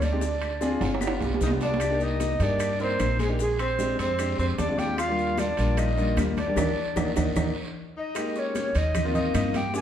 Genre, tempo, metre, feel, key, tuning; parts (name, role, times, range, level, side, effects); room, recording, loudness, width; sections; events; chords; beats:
Afro-Cuban jazz; 151 BPM; 4/4; straight; Eb major; A4 = 440 Hz
mellow reedy alto recorder; melody; 0.0-9.8 s; Ab4 to Ab5; -29 LUFS; right 1 dB
warm tenor saxophone; second line; 0.0-9.8 s; Ab3 to G4; -34 LUFS; left 2 dB
upright bass; bass; 0.0-9.8 s; G1 to G2; -28 LUFS; right 1 dB
bongos; percussion; 0.0-9.8 s; -38 LUFS; left 5 dB
congas; percussion; 0.0-9.8 s; -34 LUFS; equal
guiro; percussion; 0.0-9.8 s; -42 LUFS; right 4 dB
maracas; percussion; 0.0-9.8 s; -45 LUFS; left 5 dB
timbales; percussion; 0.0-9.7 s; -34 LUFS; right 4 dB
warm concert grand piano; accompaniment; 0.1-9.8 s; G3 to Bb4; -30 LUFS; left 2 dB
claves; percussion; 0.4-9.5 s; -42 LUFS; left 3 dB
wet large studio reverb, RT60 1.2 s; heard from further back in the room; -23 LUFS; side -10 dB against mid
0.0-8.2 A section; 8.2-9.8 B section
drum fill 0.8-1.8, 6.6-8.2; band accent 6.6-8.2
0.2 Dm7b5; 1.0 G7; 1.8 Cm9; 3.4 Bb13; 5.0 Ebmaj9; 8.2 Abmaj7
| 0.21 0.61 1.01 1.41 | 1.80 2.20 2.60 3.00 | 3.39 3.79 4.19 4.58 | 4.98 5.38 5.78 6.17 | 6.57 6.97 7.36 7.76 | 8.16 8.55 8.95 9.34 | 9.74